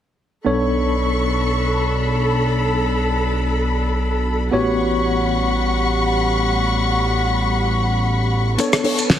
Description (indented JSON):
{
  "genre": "nu-disco, nu disco",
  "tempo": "free time",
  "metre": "none",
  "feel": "none",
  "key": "B minor",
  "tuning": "A4 = 440 Hz",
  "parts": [
    { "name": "tine electric piano", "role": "accompaniment", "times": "0.4-9.2 s", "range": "B3 to C#5", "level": "-22 LUFS", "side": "equal", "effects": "fast stereo tremolo, sidechain pumping, analog delay" },
    { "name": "warm symphonic string section", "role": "sustained chords", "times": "0.5-9.2 s", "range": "G3 to C#6", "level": "-21 LUFS", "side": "left 2 dB", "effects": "sidechain pumping" },
    { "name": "fat analog bass", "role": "bass", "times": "0.5-8.6 s", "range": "A1 to B1", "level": "-21 LUFS", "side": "equal", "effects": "none" },
    { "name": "damped 70s drum kit", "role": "drums", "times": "8.6-9.2 s", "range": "hi-hat, rim click, shaker, snare drum", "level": "-17 LUFS", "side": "equal", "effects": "small room ambience" },
    { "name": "kick drum", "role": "drums", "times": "8.6-9.2 s", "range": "none", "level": "-30 LUFS", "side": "right 1 dB", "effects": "none" },
    { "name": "direct-recorded clean electric guitar", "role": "riff", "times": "8.8-9.2 s", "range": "D4 to C#5", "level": "-24 LUFS", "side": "left 4 dB", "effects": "none" }
  ],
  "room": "moderate plate reverb, RT60 2.2 s",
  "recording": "dreamy mix soaked in reverb",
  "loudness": "-17 LUFS",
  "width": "side -10 dB against mid",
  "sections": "0.5-8.6 A section",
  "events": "none",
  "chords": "0.5 Bm9; 4.5 A13; 8.6 Bm9"
}